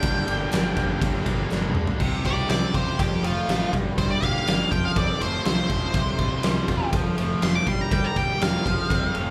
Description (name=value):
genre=classic rock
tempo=122 BPM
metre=4/4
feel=straight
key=G minor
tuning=A4 = 440 Hz
part: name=octave-fuzz lead guitar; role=melody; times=0.0-9.3 s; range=F4 to D6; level=-30 LUFS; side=equal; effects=distortion
part: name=overdriven tonewheel organ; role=sustained chords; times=0.0-9.3 s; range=G3 to D5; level=-42 LUFS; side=equal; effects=none
part: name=cranked stack guitar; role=riff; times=0.0-9.3 s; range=F2 to G4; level=-34 LUFS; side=equal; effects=overdrive
part: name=overdriven electric guitar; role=riff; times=0.0-9.3 s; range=G2 to F4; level=-33 LUFS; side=equal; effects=none
part: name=fuzz fingered electric bass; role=bass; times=0.0-9.3 s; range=E1 to E2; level=-34 LUFS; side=equal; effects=overdrive
part: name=big rock drum kit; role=drums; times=0.0-9.3 s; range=crash cymbal, kick drum, ride cymbal, snare drum, toms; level=-27 LUFS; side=equal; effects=none
part: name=group handclap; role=percussion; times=0.5-1.6 s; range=none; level=-44 LUFS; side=equal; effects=none
room=moderate large studio reverb, RT60 1.1 s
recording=band playing live in one room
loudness=-23 LUFS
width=mono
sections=0.0-2.0 A section; 2.0-9.3 B section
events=drum fill 1.5-2.0; lead electric guitar solo 2.0-9.3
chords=0.0 Gm; 2.0 Csus4; 3.0 F; 3.7 Gm; 4.7 F; 6.0 Csus4; 6.9 F; 7.7 Gm; 8.7 F